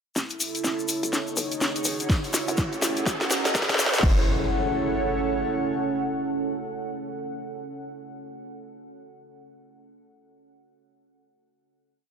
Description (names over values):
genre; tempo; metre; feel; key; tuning
bass house; 124 BPM; 4/4; swing 60% on 16ths; F# dorian; A4 = 440 Hz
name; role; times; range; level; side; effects
deep dark ambient pad; sustained chords; 0.8-7.0 s; C#4 to F#5; -30 LUFS; right 2 dB; chorus, built-in reverb, sidechain pumping
hollow knocking FM bass; bass; 0.2-5.4 s; E1 to F#2; -30 LUFS; equal; tube saturation, sidechain pumping, high-pass filter
house drum kit; drums; 0.2-4.1 s; crash cymbal, hi-hat, snare drum; -26 LUFS; left 1 dB; overdrive
egg shaker; percussion; 0.2-4.0 s; none; -30 LUFS; left 3 dB; none
riser and impact; sound effects; 1.4-7.0 s; none; -33 LUFS; equal; none
airy breathy pad; texture; 0.2-7.2 s; D#4 to D#5; -31 LUFS; right 2 dB; chorus, sidechain pumping
electronic kick drum; drums; 2.1-4.1 s; none; -23 LUFS; equal; overdrive
room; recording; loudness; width
moderate plate reverb, RT60 1.8 s; dreamy mix soaked in reverb, high-pass filter; -23 LUFS; side -7 dB against mid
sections
0.2-4.0 build; 4.0-7.9 final chord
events
build-up 0.2-4.0; drum fill 0.2-4.0; filter sweep on ambient pad 0.2-4.0; riser 1.4-4.0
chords
0.2 F#m; 1.1 B; 2.1 F#m; 3.1 Eadd9; 4.0 F#m